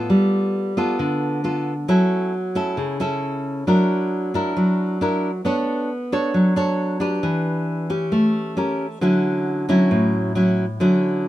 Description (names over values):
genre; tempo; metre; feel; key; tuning
bossa nova; 135 BPM; 4/4; straight; unclear; A4 = 439 Hz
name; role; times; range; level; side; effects
nylon-string guitar; solo; 0.0-11.3 s; A2 to C#5; -18 LUFS; equal; none
room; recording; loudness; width
light reverb; minimal, uncompressed stereo recording; -18 LUFS; side -14 dB against mid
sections
0.0-11.3 A section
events
none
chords
0.1 G9; 1.9 F#m7; 3.7 F#aug7; 5.4 Bm9; 7.2 Em7; 8.1 A7b9; 9.0 Dmaj9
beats
| 0.10 0.54 0.99 1.44 | 1.88 2.33 2.77 3.22 | 3.67 4.11 4.56 5.00 | 5.45 5.89 6.34 6.79 | 7.23 7.68 8.12 8.57 | 9.01 9.46 9.90 10.35 | 10.80 11.24